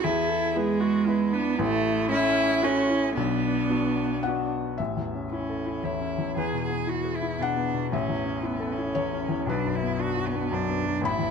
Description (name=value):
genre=neoclassical piano and strings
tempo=115 BPM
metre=3/4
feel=rubato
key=A major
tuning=A4 = 440 Hz
part: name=rich cello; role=second line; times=0.0-11.3 s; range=G#3 to G#4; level=-27 LUFS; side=right 3 dB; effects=none
part: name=dark viola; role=accompaniment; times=0.0-4.5 s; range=C#4 to A4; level=-29 LUFS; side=right 1 dB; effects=none
part: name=felt-muted upright piano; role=accompaniment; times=0.0-11.3 s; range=A1 to B5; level=-27 LUFS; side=left 3 dB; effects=none
room=light reverb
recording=close, detailed microphones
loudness=-24 LUFS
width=side -6 dB against mid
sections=0.0-4.8 A section; 4.8-11.3 B section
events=none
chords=0.0 E; 1.6 A; 3.2 Bm; 4.8 A; 6.4 E; 7.9 A; 9.5 Bm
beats=| 0.04 0.56 1.08 | 1.59 2.12 2.64 | 3.17 3.71 4.25 | 4.79 5.32 5.84 | 6.36 6.89 7.41 | 7.93 8.45 8.97 | 9.48 10.00 10.52 | 11.04